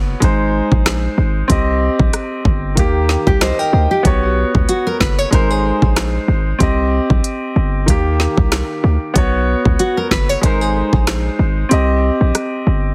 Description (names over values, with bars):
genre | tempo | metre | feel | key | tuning
dancehall | 94 BPM | 4/4 | swing 56% on 16ths | unclear | A4 = 439 Hz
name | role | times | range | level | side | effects
clear grand piano | accompaniment | 0.0-12.9 s | Eb3 to G5 | -21 LUFS | equal | none
hard-hitting 808-style bass | bass | 0.0-12.9 s | F#1 to Eb2 | -19 LUFS | equal | none
island pop drum kit | drums | 0.2-12.5 s | hi-hat, kick drum, rim click, snare drum | -19 LUFS | equal | none
nylon-string guitar | arpeggios | 3.3-11.5 s | F#4 to C#5 | -22 LUFS | equal | tape echo
room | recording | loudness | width
studio ambience | heavily compressed radio sound | -16 LUFS | mono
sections
0.0-12.9 A section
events
grand piano fill 3.1-4.0; kick muted 11.7-12.9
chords
0.2 Ab; 1.5 Cm; 2.8 Eb; 4.0 Bsus2; 5.3 Ab; 6.6 Cm; 7.9 Eb; 9.2 Bsus2; 10.4 Ab; 11.7 Cm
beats
0.22 0.86 | 1.50 2.13 2.77 3.41 | 4.05 4.69 5.33 5.96 | 6.60 7.24 7.88 8.52 | 9.16 9.79 10.43 11.07 | 11.71 12.35